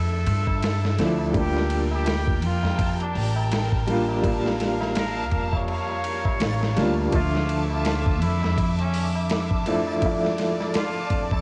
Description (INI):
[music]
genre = trip hop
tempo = 83 BPM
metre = 4/4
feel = swing 58% on 16ths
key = D harmonic minor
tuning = A4 = 440 Hz
[part]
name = trumpet with straight mute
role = melody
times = 0.0-11.4 s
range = C#4 to C#5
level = -35 LUFS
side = equal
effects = cassette tape, tape echo
[part]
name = dark upright piano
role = accompaniment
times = 0.0-11.4 s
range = D3 to E5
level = -30 LUFS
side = equal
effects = tremolo, cassette tape
[part]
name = clear studio violin section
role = sustained chords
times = 0.0-11.4 s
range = Bb4 to D6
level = -36 LUFS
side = equal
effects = cassette tape
[part]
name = upright bass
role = bass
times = 0.0-11.4 s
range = A1 to G2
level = -28 LUFS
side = equal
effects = none
[part]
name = backwards swelling texture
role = texture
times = 0.0-11.4 s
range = A5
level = -40 LUFS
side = equal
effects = built-in reverb, cassette tape
[part]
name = tabla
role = percussion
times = 0.1-11.4 s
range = none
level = -38 LUFS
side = equal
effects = none
[part]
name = dusty soul sampler-style drum kit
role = drums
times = 0.3-11.4 s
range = hi-hat, kick drum, ride cymbal, snare drum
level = -30 LUFS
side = equal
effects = overdrive, small room ambience, cassette tape
[sound]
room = light reverb, small room ambience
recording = home recording on cassette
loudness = -24 LUFS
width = mono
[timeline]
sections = 0.0-11.4 A section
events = none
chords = 0.0 Dmadd9; 1.3 Bb6; 7.1 Dmadd9